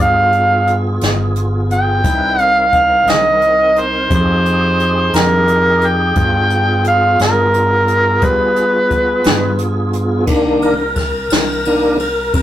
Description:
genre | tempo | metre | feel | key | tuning
slow blues | 58 BPM (dotted quarters) | 12/8 | straight | C minor | A4 = 443 Hz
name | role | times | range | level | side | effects
overdriven harmonica | melody | 0.0-9.6 s | Bb4 to G5 | -13 LUFS | equal | none
tonewheel organ | sustained chords | 0.0-12.4 s | Eb3 to B4 | -19 LUFS | equal | overdrive, chorus vibrato, slow rotary speaker
fretless electric bass | bass | 0.0-12.4 s | G1 to G3 | -18 LUFS | equal | none
jazz brush drum kit | drums | 0.3-12.4 s | crash cymbal, hi-hat, kick drum, ride cymbal, snare drum | -18 LUFS | equal | none
room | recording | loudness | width
wet studio reverb, RT60 0.5 s | rough rehearsal-room recording, tube saturation | -11 LUFS | side -12 dB against mid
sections
0.0-10.3 A section; 10.3-12.4 B section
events
tonewheel organ solo 10.3-12.4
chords
0.0 G7b9; 2.0 Cm7; 4.1 Fm7; 6.2 G7b9; 10.3 Cm7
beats
1.02 | 2.05 3.08 4.11 5.14 | 6.17 7.20 8.22 9.25 | 10.28 11.31 12.34

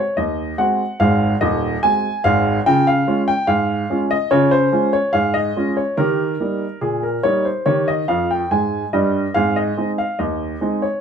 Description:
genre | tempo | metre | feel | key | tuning
ragtime piano | 72 BPM | 2/4 | straight | Ab major | A4 = 440 Hz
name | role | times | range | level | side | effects
warm upright piano | solo | 0.0-11.0 s | Eb1 to Ab5 | -16 LUFS | equal | none
room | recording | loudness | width
moderate studio reverb, RT60 0.8 s | band playing live in one room | -16 LUFS | side -7 dB against mid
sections
0.0-11.0 A section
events
upright piano fill 8.1-9.3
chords
0.0 Ab7; 2.7 Db; 6.0 Eb; 9.3 Ab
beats
0.17 | 0.99 1.82 | 2.65 3.48 | 4.31 5.14 | 5.98 6.82 | 7.66 8.51 | 9.35 10.18

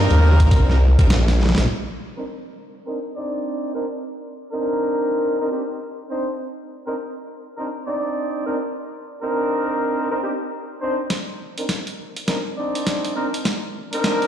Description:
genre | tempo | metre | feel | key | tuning
glitch hop | 102 BPM | 4/4 | swing 62% on 16ths | C minor | A4 = 440 Hz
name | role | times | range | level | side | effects
clear horn section | stabs | 0.0-14.3 s | C4 to D5 | -23 LUFS | equal | sidechain pumping, low-pass filter, ping-pong delay
formant-sweep wobble bass | bass | 0.0-1.7 s | Bb1 to Eb2 | -15 LUFS | equal | chorus, overdrive
boom bap sampler-style drum kit | drums | 0.1-1.7, 11.1-14.3 s | hi-hat, snare drum | -25 LUFS | equal | none
electronic kick drum | drums | 0.4-1.1 s | none | -15 LUFS | equal | none
room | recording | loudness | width
moderate plate reverb, RT60 3.0 s | played on a big sound system in a bare room, stone room reverb | -19 LUFS | side -10 dB against mid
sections
0.0-1.7 A section; 1.7-11.1 B section; 11.1-14.3 C section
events
drop 0.0-1.7; break 1.1-1.7; drum fill 1.2-1.7, 11.1-14.3; build-up 11.1-14.3; filter sweep on horn section 11.1-14.3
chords
0.0 Cm9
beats
0.51 1.10 | 1.69 2.28 2.87 3.45 | 4.04 4.63 5.22 5.81 | 6.39 6.98 7.57 8.16 | 8.75 9.34 9.92 10.51 | 11.10 11.69 12.28 12.87 | 13.45 14.04

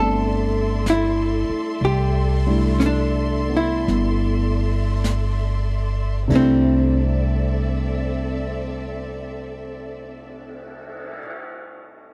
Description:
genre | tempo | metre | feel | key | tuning
jazz ballad | 45-67 BPM | 4/4 | swing 67% on 8ths | C major | A4 = 440 Hz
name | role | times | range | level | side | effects
archtop guitar, miked and amplified | melody | 0.0-11.2 s | C4 to A4 | -25 LUFS | equal | none
warm grand piano | accompaniment | 0.0-12.1 s | C3 to E4 | -28 LUFS | equal | none
warm symphonic string section | sustained chords | 0.0-11.2 s | C4 to C6 | -32 LUFS | equal | none
upright bass | bass | 0.0-11.2 s | G1 to C2 | -24 LUFS | equal | none
jazz brush drum kit | drums | 0.9-11.3 s | brushed snare drum, crash cymbal, cymbal swell, hi-hat, kick drum, snare drum | -36 LUFS | equal | none
room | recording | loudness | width
little or no reverb | dry, close 1970s-style studio recording | -21 LUFS | mono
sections
0.0-6.3 A section; 6.3-11.6 B section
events
slowing down 0.0-6.3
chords
0.0 C69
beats
0.86 | 1.81 2.81 3.88 5.04 | 6.30 7.62 8.94 10.25

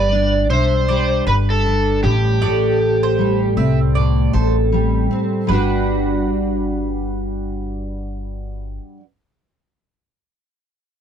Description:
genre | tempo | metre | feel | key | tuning
acoustic pop | 78 BPM | 4/4 | swing 60% on 16ths | G major | A4 = 440 Hz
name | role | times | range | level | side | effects
overdriven slide guitar | melody | 0.0-3.5 s | G4 to D5 | -19 LUFS | right 2 dB | none
fingerpicked steel-string acoustic guitar | accompaniment | 0.0-9.0 s | A2 to B4 | -20 LUFS | equal | double-tracked left and right
mandolin | arpeggios | 0.0-7.7 s | B4 to E5 | -28 LUFS | right 9 dB | none
upright bass | bass | 0.0-8.8 s | G1 to C2 | -20 LUFS | equal | none
room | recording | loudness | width
little or no reverb | dry, close 1970s-style studio recording | -15 LUFS | side -8 dB against mid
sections
0.0-5.5 A section; 5.5-8.6 B section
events
none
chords
0.0 G; 2.0 Am7; 5.5 Gmaj7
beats
0.12 0.89 1.65 | 2.42 3.19 3.96 4.72 | 5.49 6.26 7.02 7.79

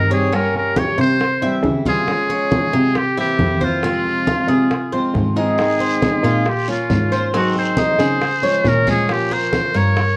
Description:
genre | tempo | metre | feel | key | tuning
latin, Cuban son and guajira | 137 BPM | 4/4 | straight | F minor | A4 = 440 Hz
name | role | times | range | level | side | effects
trumpet with metal mute | melody | 0.0-10.2 s | F4 to Db5 | -22 LUFS | equal | none
picked steel-string acoustic guitar | accompaniment | 0.0-10.0 s | C3 to Ab4 | -26 LUFS | equal | none
Cuban tres | arpeggios | 0.0-10.2 s | C4 to E5 | -26 LUFS | equal | none
rich cello | bass | 0.0-10.2 s | F2 to Db3 | -23 LUFS | equal | none
bongos | percussion | 0.3-10.2 s | none | -30 LUFS | equal | none
congas | percussion | 0.3-10.2 s | none | -27 LUFS | equal | none
guiro | percussion | 5.6-10.2 s | none | -38 LUFS | equal | none
room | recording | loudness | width
moderate studio reverb, RT60 0.5 s | worn, warbling old tape, cassette tape, warbly pitch drift | -18 LUFS | mono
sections
0.0-10.2 A section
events
drum fill 5.1-5.6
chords
0.3 Gdim; 1.2 C; 2.1 Db; 3.0 C7; 3.8 Fm; 5.6 Ab; 6.5 Bbm; 7.3 Ab7; 8.2 Db; 9.1 Bbm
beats
| 0.33 0.77 1.20 1.64 | 2.08 2.52 2.95 3.39 | 3.83 4.27 4.71 5.14 | 5.58 6.02 6.46 6.90 | 7.33 7.77 8.21 8.65 | 9.09 9.53 9.97

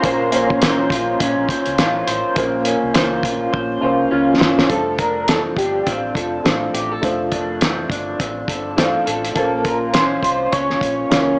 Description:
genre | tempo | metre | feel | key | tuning
indie pop, bedroom pop | 103 BPM | 4/4 | swing 60% on 16ths | F major | A4 = 440 Hz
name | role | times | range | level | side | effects
dark upright piano | accompaniment | 0.0-11.4 s | G3 to Db5 | -21 LUFS | equal | cassette tape
electric guitar through a small old amp | accompaniment | 0.0-11.4 s | F3 to C5 | -21 LUFS | equal | lush chorus, vibrato effect
warm analog pad | sustained chords | 0.0-2.3 s | Db4 to C6 | -26 LUFS | equal | chorus
vintage muted fingered electric bass | bass | 0.0-11.3 s | F1 to Bb2 | -33 LUFS | equal | none
cloth-damped thuddy drum kit | drums | 0.0-11.3 s | hi-hat, kick drum, snare drum | -19 LUFS | equal | none
warbly lo-fi synth keys | melody | 4.1-11.4 s | F4 to Db5 | -20 LUFS | equal | lush chorus, slapback echo
room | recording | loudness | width
moderate studio reverb, RT60 0.6 s | small speaker sound | -15 LUFS | side -29 dB against mid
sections
0.0-2.4 A section; 2.4-4.7 B section; 4.7-11.4 C section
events
drum fill 3.5-4.7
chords
0.0 Bbmadd9; 4.7 F6; 9.4 Bbmadd9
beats
| 0.03 0.61 1.20 1.78 | 2.36 2.95 3.53 4.11 | 4.70 5.28 5.86 6.45 | 7.03 7.61 8.19 8.78 | 9.36 9.94 10.53 11.11

